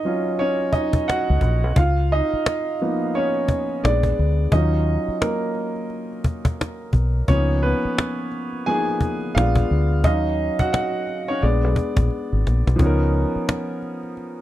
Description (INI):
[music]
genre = R&B, neo-soul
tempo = 87 BPM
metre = 4/4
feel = swing 60% on 16ths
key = Eb minor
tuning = A4 = 440 Hz
[part]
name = warm upright piano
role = accompaniment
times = 0.0-14.4 s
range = F3 to Ab5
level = -22 LUFS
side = right 1 dB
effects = none
[part]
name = cajon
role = drums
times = 0.0-14.3 s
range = none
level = -22 LUFS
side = equal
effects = none
[part]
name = deep dub fingered electric bass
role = bass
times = 1.3-13.4 s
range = Ab1 to Eb2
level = -19 LUFS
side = equal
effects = none
[sound]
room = small room reverb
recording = dry, close 1970s-style studio recording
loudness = -19 LUFS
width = side -14 dB against mid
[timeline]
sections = 0.0-12.8 A section; 12.8-14.4 A section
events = upright piano solo 0.0-12.8; drum fill 12.1-12.8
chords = 0.0 Ebm9; 1.8 Db13; 3.8 Bb7b9; 4.5 Ebm9; 7.3 Db13; 9.3 Bb7b9; 10.0 Ebm9; 11.4 Bb7b9; 12.8 Db13